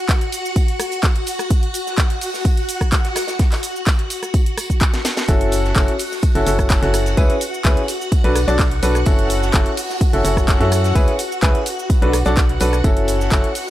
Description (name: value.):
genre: piano house.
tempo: 127 BPM.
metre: 4/4.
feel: straight.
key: F# minor.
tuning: A4 = 440 Hz.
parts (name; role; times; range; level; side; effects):
string machine, violins; sustained chords; 0.0-13.7 s; F#4 to F#5; -26 LUFS; left 1 dB; ensemble chorus, sidechain pumping.
electronic kick drum; drums; 0.1-13.4 s; none; -16 LUFS; equal; none.
house drum kit; drums; 0.1-13.7 s; handclaps, hi-hat, rim click, shaker, snare drum; -24 LUFS; equal; none.
modern studio drum kit; drums; 0.1-13.7 s; hi-hat, snare drum, tambourine; -34 LUFS; right 2 dB; none.
bright baby grand piano; riff; 5.3-13.5 s; C#4 to D5; -20 LUFS; equal; sidechain pumping, analog delay.
organ-like FM bass; bass; 5.3-13.4 s; F#1 to F#2; -20 LUFS; equal; sidechain pumping.
room: small room ambience.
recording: none.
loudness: -15 LUFS.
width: side -14 dB against mid.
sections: 0.0-13.7 A section.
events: drum fill 4.9-5.3.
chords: 0.0 N.C.; 5.3 F#m7; 7.2 C#m7; 7.9 Bm7; 9.1 F#m7; 11.0 C#m7; 11.7 Bm7; 12.8 F#m7.